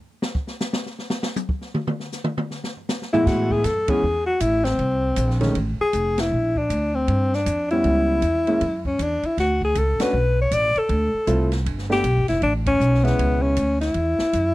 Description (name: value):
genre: jazz, small-group swing and bop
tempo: 157 BPM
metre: 4/4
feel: swing 63% on 8ths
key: A major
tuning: A4 = 440 Hz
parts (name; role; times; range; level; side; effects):
- open jazz drum kit; drums; 0.2-14.4 s; crash cymbal, hi-hat, kick drum, ride cymbal, snare drum, toms; -29 LUFS; equal; none
- clear alto saxophone; melody; 3.1-14.5 s; B3 to D5; -21 LUFS; left 1 dB; none
- warm baby grand piano; accompaniment; 3.1-13.5 s; A2 to G4; -24 LUFS; right 1 dB; none
- upright bass; bass; 3.3-14.5 s; F1 to A2; -23 LUFS; equal; none
room: small room ambience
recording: dry, close 1970s-style studio recording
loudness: -19 LUFS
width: side -17 dB against mid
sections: 0.0-3.3 A section; 3.3-14.5 B section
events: drum solo 0.0-3.3; band accent 3.8, 6.1, 9.9, 12.6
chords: 0.0 N.C.; 2.5 E; 3.3 Amaj7sus2; 4.8 Cm7; 5.6 Fm; 6.3 Bb69; 7.8 C#m7b5; 8.6 Dmaj9; 9.4 Bm9; 10.9 Dm7; 11.7 G9; 12.4 Amaj9